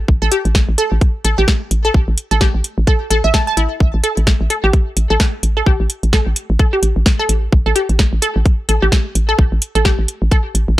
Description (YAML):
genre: minimal techno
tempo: 129 BPM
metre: 4/4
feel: swing 59% on 16ths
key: unclear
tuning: A4 = 436 Hz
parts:
  - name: hollow knocking FM bass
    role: bass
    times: 0.0-10.8 s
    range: A1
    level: -16 LUFS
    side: equal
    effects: sidechain pumping
  - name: electronic kick drum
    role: drums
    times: 0.1-10.4 s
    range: none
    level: -13 LUFS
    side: equal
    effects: none
  - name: resonant blip pluck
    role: riff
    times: 0.2-10.4 s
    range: E4 to A5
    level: -18 LUFS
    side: equal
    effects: wide subtle chorus, sidechain pumping, tape echo
  - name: booming analog drum machine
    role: drums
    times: 0.3-10.7 s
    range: hi-hat, snare drum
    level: -19 LUFS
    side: equal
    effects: overdrive
room: digital ambience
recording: dry, gritty hardware recording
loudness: -13 LUFS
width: side -16 dB against mid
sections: 0.0-10.8 A section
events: none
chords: 0.0 A5